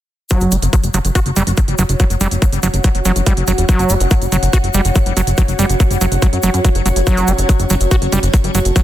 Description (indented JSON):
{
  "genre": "psychedelic trance",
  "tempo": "142 BPM",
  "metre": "4/4",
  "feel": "straight",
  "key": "F# phrygian",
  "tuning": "A4 = 439 Hz",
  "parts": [
    { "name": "overdriven acid bass", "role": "riff", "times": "0.3-8.8 s", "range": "F#3 to F#4", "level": "-19 LUFS", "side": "right 1 dB", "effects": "distortion, auto-pan, sidechain pumping, ping-pong delay" },
    { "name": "electronic hi-hat", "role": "drums", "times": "0.3-8.8 s", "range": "none", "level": "-24 LUFS", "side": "right 2 dB", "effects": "none" },
    { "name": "electronic kick drum", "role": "drums", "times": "0.3-8.8 s", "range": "none", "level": "-12 LUFS", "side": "equal", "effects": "none" },
    { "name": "egg shaker", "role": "percussion", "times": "0.3-8.8 s", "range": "none", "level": "-27 LUFS", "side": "left 4 dB", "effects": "none" },
    { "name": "granular cloud pad", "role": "texture", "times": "1.3-8.8 s", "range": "F#4 to A5", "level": "-22 LUFS", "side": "equal", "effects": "built-in reverb, sidechain pumping" },
    { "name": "plucky analog bass", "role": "bass", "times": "0.4-8.7 s", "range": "E1 to F#2", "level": "-16 LUFS", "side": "equal", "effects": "none" }
  ],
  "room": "digital ambience",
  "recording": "dense, heavily limited modern master",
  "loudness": "-12 LUFS",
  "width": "side -13 dB against mid",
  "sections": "0.3-8.8 A section",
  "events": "none",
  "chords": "0.3 F#5",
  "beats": "| 0.31 0.73 1.15 1.57 | 2.00 2.42 2.84 3.27 | 3.69 4.11 4.53 4.96 | 5.38 5.80 6.22 6.65 | 7.07 7.49 7.91 8.34 | 8.76"
}